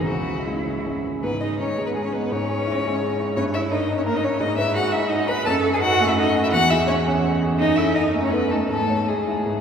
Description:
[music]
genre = quick classical-period movement for piano trio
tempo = 154-173 BPM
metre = 3/4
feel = rubato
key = G# minor, C# minor from 5.5 s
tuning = A4 = 440 Hz
[part]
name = warm violin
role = melody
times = 0.0-9.6 s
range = E4 to B5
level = -24 LUFS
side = left 3 dB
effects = none
[part]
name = rich cello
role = second line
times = 0.0-9.6 s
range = G#3 to B4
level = -25 LUFS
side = right 3 dB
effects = none
[part]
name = clear grand piano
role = accompaniment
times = 0.0-9.6 s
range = G#1 to C#5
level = -23 LUFS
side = equal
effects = none
[sound]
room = wet cathedral reverb, RT60 4.9 s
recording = heard from further back in the room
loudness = -19 LUFS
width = side -7 dB against mid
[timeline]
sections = 0.0-1.2 A section; 1.2-9.6 B section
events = none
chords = 0.1 C#m; 1.2 G#5; 2.3 C#m/G#; 3.4 D#7/G; 4.4 G#m; 5.5 D#dim/F#; 6.5 C#m/E; 7.6 D#dim/F#; 8.7 C#m/G#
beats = | 0.09 0.47 0.86 | 1.23 1.59 1.95 | 2.30 2.66 3.01 | 3.37 3.71 4.06 | 4.41 4.76 5.11 | 5.46 5.82 6.17 | 6.53 6.88 7.24 | 7.60 7.96 8.32 | 8.71 9.09 9.47

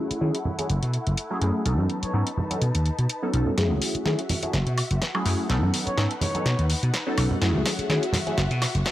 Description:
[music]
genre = filtered disco house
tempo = 125 BPM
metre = 4/4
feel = swing 55% on 16ths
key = F# dorian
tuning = A4 = 440 Hz
[part]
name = funky polysynth comp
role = accompaniment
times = 0.0-8.4 s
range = F#3 to A4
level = -28 LUFS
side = equal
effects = chorus, phaser, low-pass filter
[part]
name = rich studio string section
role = sustained chords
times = 0.0-8.9 s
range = A3 to A5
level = -34 LUFS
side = left 2 dB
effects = low-pass filter
[part]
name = vintage slap bass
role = bass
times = 0.1-8.8 s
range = F#1 to D#3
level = -24 LUFS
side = equal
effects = low-pass filter
[part]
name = house drum kit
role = drums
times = 0.1-8.9 s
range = hi-hat, snare drum, woodblock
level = -29 LUFS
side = equal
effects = high-pass filter on hats, high-pass filter on snare, high-pass filter on perc
[part]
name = tube shaker and congas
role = percussion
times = 0.1-8.9 s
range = none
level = -30 LUFS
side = right 1 dB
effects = low-pass filter on perc
[part]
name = mellow trumpet section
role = melody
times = 2.0-2.2, 5.9-6.7 s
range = C#5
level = -33 LUFS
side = equal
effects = low-pass filter
[sound]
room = light reverb, small room ambience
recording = dry, gritty hardware recording, transformer saturation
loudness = -22 LUFS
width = side -14 dB against mid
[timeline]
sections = 0.0-3.6 A section; 3.6-8.9 B section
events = build-up 3.6-8.9; drum fill 3.6-8.9; filter sweep 3.6-8.9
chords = 0.0 F#m7; 1.7 B7; 3.6 F#m7; 5.5 B7; 7.4 F#m7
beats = 0.22 0.70 1.18 | 1.66 2.14 2.62 3.10 | 3.58 4.06 4.54 5.02 | 5.50 5.98 6.46 6.94 | 7.42 7.90 8.38 8.86

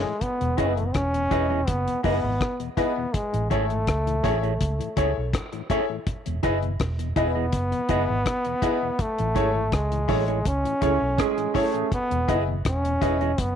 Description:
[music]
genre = roots reggae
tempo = 82 BPM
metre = 4/4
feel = straight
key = E major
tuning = A4 = 441 Hz
[part]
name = bright trombone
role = melody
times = 0.0-13.6 s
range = G#3 to C#4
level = -26 LUFS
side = equal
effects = none
[part]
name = mellow tonewheel organ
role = accompaniment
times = 0.0-13.3 s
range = E2 to G#4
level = -36 LUFS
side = left 10 dB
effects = chorus vibrato, slow rotary speaker
[part]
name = bright upright piano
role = stabs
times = 0.0-13.2 s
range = E4 to D#5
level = -30 LUFS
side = left 11 dB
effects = none
[part]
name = vintage muted fingered electric bass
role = bass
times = 0.0-13.6 s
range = E1 to C#2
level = -27 LUFS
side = right 1 dB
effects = none
[part]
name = deep reggae drum kit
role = drums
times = 0.2-13.6 s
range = hi-hat, kick drum, rim click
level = -28 LUFS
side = left 2 dB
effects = none
[part]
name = mellow electric guitar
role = accompaniment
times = 0.6-13.3 s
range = E4 to E5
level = -31 LUFS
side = right 13 dB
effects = none
[part]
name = brilliant trombone section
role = second line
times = 10.8-11.9 s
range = A2 to G#4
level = -28 LUFS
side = right 14 dB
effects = tape echo
[sound]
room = light reverb, small room ambience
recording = 1960s-style stereo with parts hard left and right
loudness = -22 LUFS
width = side -8 dB against mid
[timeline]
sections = 0.2-13.6 A section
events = drum fill 0.0; band accent 9.0-11.9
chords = 0.2 Emaj7; 3.1 Amaj7; 6.1 Emaj7; 9.0 Amaj7; 11.9 Emaj7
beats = | 0.21 0.95 1.68 2.41 | 3.14 3.87 4.60 5.33 | 6.07 6.80 7.53 8.26 | 8.99 9.72 10.46 11.19 | 11.92 12.65 13.38

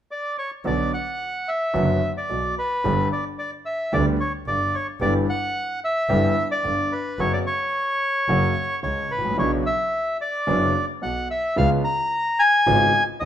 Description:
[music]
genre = tango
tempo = 110 BPM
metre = 4/4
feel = rubato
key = B harmonic minor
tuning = A4 = 438 Hz
[part]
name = bandoneon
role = melody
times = 0.1-13.3 s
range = B4 to A#5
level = -22 LUFS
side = equal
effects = none
[part]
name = clear concert grand piano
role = accompaniment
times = 0.6-13.3 s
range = F#1 to G4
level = -24 LUFS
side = equal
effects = none
[part]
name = rich double bass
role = bass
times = 0.7-13.3 s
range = F#1 to D2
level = -27 LUFS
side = equal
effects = none
[sound]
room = moderate large studio reverb, RT60 1.2 s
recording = minimal, uncompressed stereo recording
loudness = -20 LUFS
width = side -10 dB against mid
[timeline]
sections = 0.7-13.3 A section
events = none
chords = 0.0 N.C.; 0.7 Bm; 2.8 G; 5.0 Em/G; 7.2 F#sus4; 8.3 F#; 9.4 Bmadd9; 11.6 C#7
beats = 0.11 | 0.66 1.21 1.75 2.30 | 2.85 3.39 3.93 4.47 | 5.02 5.56 6.10 6.65 | 7.19 7.74 8.29 8.84 | 9.39 9.94 10.49 11.03 | 11.58 12.13 12.67 13.21

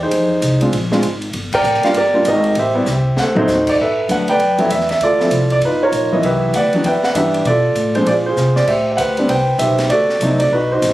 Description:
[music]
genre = jazz piano trio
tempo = 196 BPM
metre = 4/4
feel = swing 62% on 8ths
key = G major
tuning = A4 = 439 Hz
[part]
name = warm concert grand piano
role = melody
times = 0.0-10.9 s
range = E3 to G5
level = -14 LUFS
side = right 1 dB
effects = none
[part]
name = upright bass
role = bass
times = 0.0-10.9 s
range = G1 to C3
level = -21 LUFS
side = equal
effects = none
[part]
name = open jazz drum kit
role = drums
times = 0.1-10.9 s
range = crash cymbal, hi-hat, kick drum, ride cymbal, snare drum, toms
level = -26 LUFS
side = left 1 dB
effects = none
[sound]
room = light reverb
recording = recorded on a phone in the room, studio ambience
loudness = -13 LUFS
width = side -16 dB against mid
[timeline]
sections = 0.0-3.8 A section; 3.8-10.9 B section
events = band accent 1.5; drum fill 2.9-3.5, 8.4-8.7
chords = 0.1 Fm7; 0.7 Bb7(no3); 1.3 Ebmaj7; 2.6 Am7; 3.2 D7b9; 3.8 Gmaj9; 5.0 Dm7; 5.6 G7alt; 6.2 Cmaj9#11; 7.5 Bm7b5; 8.1 Bbsus2; 8.7 Am11; 9.9 D7b9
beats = | 0.12 0.42 0.73 1.03 | 1.34 1.65 1.95 2.26 | 2.56 2.87 3.17 3.48 | 3.78 4.09 4.39 4.70 | 5.01 5.31 5.62 5.92 | 6.23 6.54 6.84 7.15 | 7.46 7.76 8.07 8.37 | 8.68 8.98 9.29 9.60 | 9.90 10.21 10.52 10.82

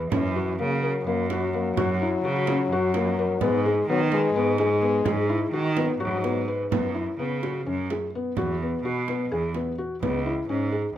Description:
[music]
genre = contemporary instrumental, chamber music in an uneven meter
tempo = 255 BPM (eighths)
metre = 7/8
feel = straight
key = unclear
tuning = A4 = 441 Hz
[part]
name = felt-muted upright piano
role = arpeggios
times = 0.0-10.9 s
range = A#3 to B4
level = -27 LUFS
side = left 3 dB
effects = none
[part]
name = clear cello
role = bass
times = 0.0-11.0 s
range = C#2 to D#3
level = -28 LUFS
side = right 3 dB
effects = none
[part]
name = warm French horn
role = second line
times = 0.1-6.5 s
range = E3 to G#3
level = -27 LUFS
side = left 4 dB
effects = none
[part]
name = frame drum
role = percussion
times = 0.1-10.2 s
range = none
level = -31 LUFS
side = right 7 dB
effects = none
[sound]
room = light reverb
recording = close, detailed microphones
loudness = -22 LUFS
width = side -11 dB against mid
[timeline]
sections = 0.0-6.7 A section; 6.7-11.0 B section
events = none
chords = 0.1 F#; 3.4 G#m; 6.7 F#sus4; 8.4 Esus2; 10.0 C#m7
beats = | 0.12 0.35 0.59 0.83 1.07 1.30 1.54 | 1.77 2.01 2.24 2.48 2.71 2.95 3.18 | 3.42 3.65 3.88 4.12 4.35 4.59 4.82 | 5.06 5.29 5.53 5.77 6.00 6.24 6.48 | 6.72 6.96 7.20 7.43 7.67 7.91 8.14 | 8.38 8.62 8.85 9.08 9.32 9.55 9.79 | 10.02 10.26 10.49 10.72 10.96

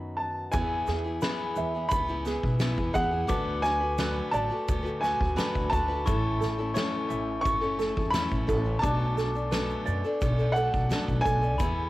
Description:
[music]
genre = indie folk with a building arrangement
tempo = 87 BPM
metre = 4/4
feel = straight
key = E mixolydian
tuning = A4 = 440 Hz
[part]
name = clear upright piano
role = melody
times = 0.0-11.9 s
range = F#5 to C#6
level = -30 LUFS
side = equal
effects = cassette tape
[part]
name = fingerpicked steel-string acoustic guitar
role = accompaniment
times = 0.0-0.5 s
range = F#2 to F#4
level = -38 LUFS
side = left 1 dB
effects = cassette tape
[part]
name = glockenspiel with soft plastic mallets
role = second line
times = 0.5-11.9 s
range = G#5 to D6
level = -37 LUFS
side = left 5 dB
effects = cassette tape
[part]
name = picked acoustic archtop guitar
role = accompaniment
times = 0.5-11.9 s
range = A2 to B4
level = -32 LUFS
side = left 2 dB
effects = cassette tape
[part]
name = ukulele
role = arpeggios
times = 0.5-11.9 s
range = D4 to E5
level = -35 LUFS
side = right 5 dB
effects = cassette tape
[part]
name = upright bass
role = bass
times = 0.5-11.9 s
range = F#1 to F#2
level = -30 LUFS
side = equal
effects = none
[part]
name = soft-mallet drum kit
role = drums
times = 0.5-11.8 s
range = kick drum, ride cymbal, snare drum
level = -32 LUFS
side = equal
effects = cassette tape
[part]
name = egg shaker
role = percussion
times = 0.5-11.8 s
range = none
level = -52 LUFS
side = right 11 dB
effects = none
[sound]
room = studio reverb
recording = home recording on cassette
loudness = -25 LUFS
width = side -17 dB against mid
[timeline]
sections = 0.5-11.9 A section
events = none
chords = 0.0 B; 0.5 E; 3.3 D6; 6.1 A; 8.8 Bm7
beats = | 0.54 1.23 1.93 2.62 | 3.31 4.00 4.69 5.38 | 6.07 6.76 7.45 8.14 | 8.83 9.52 10.21 10.90 | 11.59

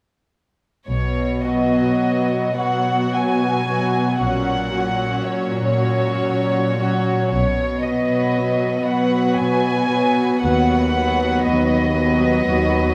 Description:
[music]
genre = classical, slow romantic movement for string orchestra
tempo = 52-61 BPM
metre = 3/4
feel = rubato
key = B major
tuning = A4 = 441 Hz
[part]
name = warm chamber violin section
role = melody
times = 0.9-12.9 s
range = C#5 to G#5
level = -25 LUFS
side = equal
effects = none
[part]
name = dark chamber cello section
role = bass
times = 0.9-12.9 s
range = D#2 to B2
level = -25 LUFS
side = equal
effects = none
[part]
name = warm chamber double bass section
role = bass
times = 0.9-11.3 s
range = A#1 to D#2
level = -28 LUFS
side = equal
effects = none
[part]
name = warm chamber viola section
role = accompaniment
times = 1.4-12.9 s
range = F#3 to C#4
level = -24 LUFS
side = equal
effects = none
[part]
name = warm chamber violin section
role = second line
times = 1.5-12.9 s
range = F#4 to B4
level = -27 LUFS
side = equal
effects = none
[sound]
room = moderate scoring stage reverb, RT60 1.8 s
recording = none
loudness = -19 LUFS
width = mono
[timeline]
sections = 0.9-12.9 A section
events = none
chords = 0.9 B; 4.2 F#/A#; 7.3 B; 10.4 B/D#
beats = | 0.88 2.03 3.14 | 4.21 5.25 6.29 | 7.32 8.36 9.38 | 10.44 11.47 12.47

